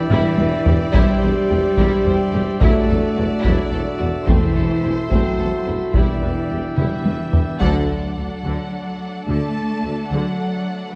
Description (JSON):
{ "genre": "cinematic, epic orchestral film score", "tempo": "72 BPM (dotted quarters)", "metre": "6/8", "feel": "straight", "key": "unclear", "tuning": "A4 = 438 Hz", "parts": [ { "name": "rich symphonic violin section", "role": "melody", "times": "0.0-10.9 s", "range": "C5 to A5", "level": "-34 LUFS", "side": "equal", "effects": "none" }, { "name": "mellow French horn section", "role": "sustained chords", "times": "0.0-10.9 s", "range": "A3 to A4", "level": "-28 LUFS", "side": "equal", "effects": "none" }, { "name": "pipe organ, sparkling flutes", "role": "sustained chords", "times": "0.0-7.6 s", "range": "B3 to E5", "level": "-29 LUFS", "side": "equal", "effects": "none" }, { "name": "rich studio cello section", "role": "bass", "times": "0.0-10.9 s", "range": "E3 to A3", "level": "-27 LUFS", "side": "equal", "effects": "none" }, { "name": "rich symphonic violin section", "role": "second line", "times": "0.1-11.0 s", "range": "C4 to D5", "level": "-33 LUFS", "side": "equal", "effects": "none" }, { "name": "warm symphonic viola section", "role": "accompaniment", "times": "0.1-10.9 s", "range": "D3 to D4", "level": "-30 LUFS", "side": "equal", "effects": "none" }, { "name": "rich symphonic double bass section", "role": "bass", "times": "0.1-10.2 s", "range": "D2 to E2", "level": "-28 LUFS", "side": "equal", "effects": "none" }, { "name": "warm tuba", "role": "bass", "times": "0.1-10.2 s", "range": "E1 to D2", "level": "-30 LUFS", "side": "equal", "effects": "none" }, { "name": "solo taiko drums", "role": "drums", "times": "0.1-8.7 s", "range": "none", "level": "-22 LUFS", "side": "equal", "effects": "none" }, { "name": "timpani", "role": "percussion", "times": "4.3-6.7 s", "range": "E2", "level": "-30 LUFS", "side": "equal", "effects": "none" } ], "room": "moderate scoring stage reverb, RT60 1.9 s", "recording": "dark, warm production", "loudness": "-19 LUFS", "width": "mono", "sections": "0.0-7.6 A section; 7.6-11.0 B section", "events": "drum fill 0.1-0.9, 6.8-7.6; band accent 7.6-8.2", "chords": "0.0 Em7; 0.9 Cadd9/E; 2.6 Dadd9/E; 4.3 Am/E; 5.9 Em7; 7.6 D" }